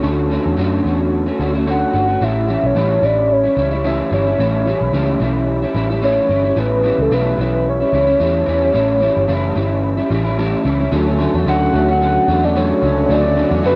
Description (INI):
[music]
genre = indie pop, bedroom pop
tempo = 110 BPM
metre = 4/4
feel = swing 55% on 16ths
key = D major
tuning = A4 = 442 Hz
[part]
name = electric guitar through a small old amp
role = accompaniment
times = 0.0-13.8 s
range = A2 to F#4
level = -20 LUFS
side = equal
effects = analog chorus, warbly pitch drift, cassette tape
[part]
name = vintage muted picked electric bass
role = bass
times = 0.0-13.8 s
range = F#1 to F#2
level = -22 LUFS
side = equal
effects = none
[part]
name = soft octave-layered synth lead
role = melody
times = 1.7-13.8 s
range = A4 to F#5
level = -20 LUFS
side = equal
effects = phaser, analog chorus, cassette tape, tape echo
[part]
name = phased analog pad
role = sustained chords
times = 10.9-13.8 s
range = C#3 to F#4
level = -30 LUFS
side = equal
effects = phaser, chorus, cassette tape
[sound]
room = light reverb, digital ambience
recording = home recording on cassette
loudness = -16 LUFS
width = mono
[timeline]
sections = 0.0-10.9 A section; 10.9-13.8 B section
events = none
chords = 0.0 Dmaj7; 2.2 A7; 10.9 Dmaj7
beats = | 0.04 0.58 1.13 1.67 | 2.21 2.76 3.30 3.85 | 4.39 4.93 5.48 6.02 | 6.57 7.11 7.66 8.20 | 8.75 9.29 9.83 10.38 | 10.92 11.46 12.01 12.55 | 13.09 13.63